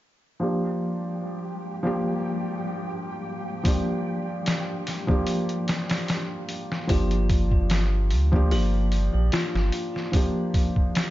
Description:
trip hop; 74 BPM; 4/4; swing 54% on 16ths; G minor; A4 = 440 Hz
felt-muted upright piano; accompaniment; 0.4-11.1 s; F3 to G4; -27 LUFS; equal; harmonic tremolo, low-pass filter, tape echo
flickering grainy texture; texture; 0.9-6.9 s; G3 to G4; -37 LUFS; right 1 dB; built-in reverb
trip hop sampler-style drum kit; drums; 3.6-11.1 s; hi-hat, kick drum, snare drum; -25 LUFS; equal; small room ambience
music box; arpeggios; 6.9-9.7 s; F4 to G4; -33 LUFS; left 2 dB; tape echo
warm sub bass; bass; 6.9-9.7 s; G1 to D2; -22 LUFS; equal
light reverb; nothing above 7.6 kHz; -23 LUFS; side -15 dB against mid
0.4-6.9 A section; 6.9-11.1 B section
break 5.3-6.9
0.4 Gm7
| 0.41 1.22 2.03 2.84 | 3.65 4.46 5.27 6.08 | 6.89 7.71 8.52 9.33 | 10.14 10.95

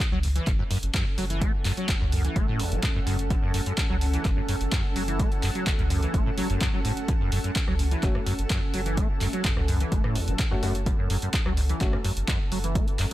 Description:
acid house; 127 BPM; 4/4; straight; F# minor; A4 = 442 Hz
electronic kick drum; drums; 0.0-12.9 s; -27 LUFS; equal
punchy analog drum machine; drums; 0.0-13.1 s; handclaps, hi-hat, rim click; -32 LUFS; equal
granular cloud pad; texture; 0.7-13.1 s; C#4 to A5; -34 LUFS; right 1 dB; built-in reverb, sidechain pumping
liquid acid bass; riff; 0.1-13.1 s; F#1 to A3; -29 LUFS; equal; overdrive, ensemble chorus, sidechain pumping, tape echo
warm sub bass; bass; 0.1-13.1 s; F#1 to C#2; -28 LUFS; equal; sidechain pumping
clear grand piano; stabs; 8.0-11.9 s; A3 to F#4; -34 LUFS; left 2 dB; tape echo
little or no reverb; -23 LUFS; side -15 dB against mid
0.0-13.1 A section
0.0 F#m
0.00 0.47 0.94 | 1.42 1.89 2.36 2.83 | 3.31 3.78 4.25 4.72 | 5.20 5.67 6.14 6.61 | 7.08 7.56 8.03 8.50 | 8.97 9.45 9.92 10.39 | 10.86 11.34 11.81 12.28 | 12.75

